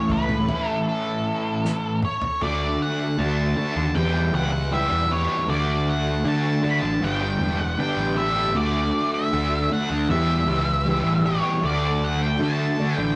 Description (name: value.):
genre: psychedelic rock.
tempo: 78 BPM.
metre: 4/4.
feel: straight.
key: unclear.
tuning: A4 = 440 Hz.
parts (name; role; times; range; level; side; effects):
octave-fuzz lead guitar; melody; 0.0-13.1 s; A4 to B5; -29 LUFS; equal; distortion.
string machine, full ensemble; sustained chords; 0.0-13.1 s; C#4 to B5; -39 LUFS; equal; none.
overdriven semi-hollow guitar; riff; 0.0-13.1 s; E2 to G4; -27 LUFS; equal; harmonic tremolo.
fuzz picked electric bass; bass; 0.1-13.2 s; E1 to D3; -27 LUFS; equal; overdrive.
damped 70s drum kit; drums; 0.1-2.4 s; kick drum, snare drum, toms; -33 LUFS; equal; none.
room: moderate stone room reverb, RT60 1.0 s.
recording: rough rehearsal-room recording, tube saturation, nothing above 10.5 kHz.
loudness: -23 LUFS.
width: mono.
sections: 0.0-2.4 A section; 2.4-13.2 B section.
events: drum fill 1.6-2.4.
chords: 0.0 A; 2.4 D; 3.9 Em; 5.5 D; 7.0 G; 8.6 D; 10.1 Em; 11.6 D.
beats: 0.10 0.87 1.64 | 2.41 3.18 3.95 4.72 | 5.49 6.25 7.02 7.79 | 8.56 9.33 10.10 10.86 | 11.63 12.40.